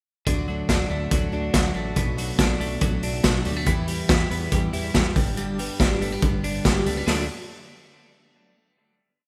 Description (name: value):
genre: jangly indie pop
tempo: 141 BPM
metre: 4/4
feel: straight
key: D major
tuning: A4 = 440 Hz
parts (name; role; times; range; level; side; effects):
- picked plugged-in twelve-string acoustic guitar; accompaniment; 0.3-7.3 s; G2 to G4; -34 LUFS; equal; none
- twelve-string electric guitar; arpeggios; 0.3-7.3 s; G2 to E4; -31 LUFS; equal; none
- woody fretless electric bass; bass; 0.3-7.3 s; G1 to E2; -32 LUFS; equal; ensemble chorus
- raw garage drum kit; drums; 0.3-7.2 s; hi-hat, kick drum, snare drum; -25 LUFS; equal; none
room: light reverb, small room reverb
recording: rough home demo mix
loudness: -23 LUFS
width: mono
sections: 0.3-7.1 verse; 7.1-8.8 final chord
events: none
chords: 0.3 D; 2.0 Bm7; 3.7 Em; 5.2 G; 7.1 D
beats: | 0.27 0.69 1.12 1.54 | 1.97 2.39 2.82 3.25 | 3.67 4.10 4.52 4.95 | 5.38 5.80 6.23 6.65 | 7.08